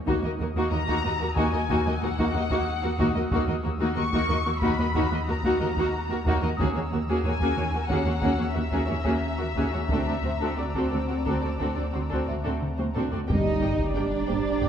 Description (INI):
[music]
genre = cinematic, suspense film score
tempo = 92 BPM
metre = 5/4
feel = straight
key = Eb phrygian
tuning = A4 = 442 Hz
[part]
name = warm sub bass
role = drone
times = 0.0-14.7 s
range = G1 to Eb2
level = -32 LUFS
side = equal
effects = none
[part]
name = worn celesta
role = texture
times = 0.0-14.7 s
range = C4 to Eb6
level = -38 LUFS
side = left 3 dB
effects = none
[part]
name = muted studio violin section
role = second line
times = 0.1-14.7 s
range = Db4 to Eb5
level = -31 LUFS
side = left 1 dB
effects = none
[part]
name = muted studio viola section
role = accompaniment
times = 0.1-14.7 s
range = Bb3 to G4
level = -29 LUFS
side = equal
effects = none
[part]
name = muted studio cello section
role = bass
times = 0.1-14.7 s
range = D2 to Eb4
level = -32 LUFS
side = right 3 dB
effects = none
[part]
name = muted studio double bass section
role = bass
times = 0.1-14.7 s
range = D2 to G2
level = -34 LUFS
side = right 3 dB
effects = none
[part]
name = solo taiko drums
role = drums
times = 0.1-14.7 s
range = none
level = -34 LUFS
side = equal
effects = none
[part]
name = muted studio violin section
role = texture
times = 0.1-14.7 s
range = G5 to A6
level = -40 LUFS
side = left 5 dB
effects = none
[part]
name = muted studio violin section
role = melody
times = 0.7-14.7 s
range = D5 to Db6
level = -32 LUFS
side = left 4 dB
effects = none
[part]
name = dark French horn section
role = sustained chords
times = 13.3-14.7 s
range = G3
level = -29 LUFS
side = left 1 dB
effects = none
[part]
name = timpani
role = percussion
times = 13.3-14.2 s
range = G2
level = -33 LUFS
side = left 1 dB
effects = none
[part]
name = sub drop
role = sound effects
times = 13.4-14.7 s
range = none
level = -34 LUFS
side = equal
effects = none
[sound]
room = moderate scoring stage reverb, RT60 1.5 s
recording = none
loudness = -23 LUFS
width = side -8 dB against mid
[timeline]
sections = 0.0-13.3 A section; 13.3-14.7 B section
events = drum fill 12.5-13.3; impact 13.3-14.7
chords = 0.1 Ebm; 9.9 D7; 13.3 Gm